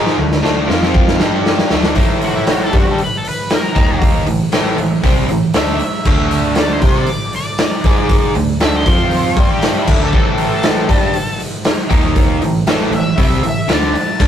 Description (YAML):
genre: blues rock power trio and southern rock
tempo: 118 BPM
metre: 4/4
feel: straight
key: unclear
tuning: A4 = 439 Hz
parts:
  - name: biting overdriven guitar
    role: riff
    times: 0.0-14.3 s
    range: A2 to C5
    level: -16 LUFS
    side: right 1 dB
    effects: none
  - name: vintage muted picked electric bass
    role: bass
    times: 0.0-14.3 s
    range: A1 to C3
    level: -23 LUFS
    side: equal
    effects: none
  - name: raw garage drum kit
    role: drums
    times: 0.1-14.3 s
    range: crash cymbal, hi-hat, kick drum, snare drum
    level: -15 LUFS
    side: equal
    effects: none
  - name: octave-fuzz lead guitar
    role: melody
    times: 2.2-14.3 s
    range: E4 to A5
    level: -21 LUFS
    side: left 1 dB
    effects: wah, distortion
room: light reverb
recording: rough rehearsal-room recording, tube saturation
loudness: -12 LUFS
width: side -9 dB against mid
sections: 0.0-2.0 A section; 2.0-14.3 B section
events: drum fill 0.0-2.0; lead electric guitar solo 2.0-14.3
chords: 0.2 D5; 0.7 F5; 1.2 G5; 1.7 D5; 2.0 A5; 3.8 D#5; 4.3 A5; 6.1 D5; 7.8 G#5; 8.4 D5; 8.9 F5; 9.4 G5; 9.9 D5; 10.1 A5; 11.9 D#5; 12.4 A5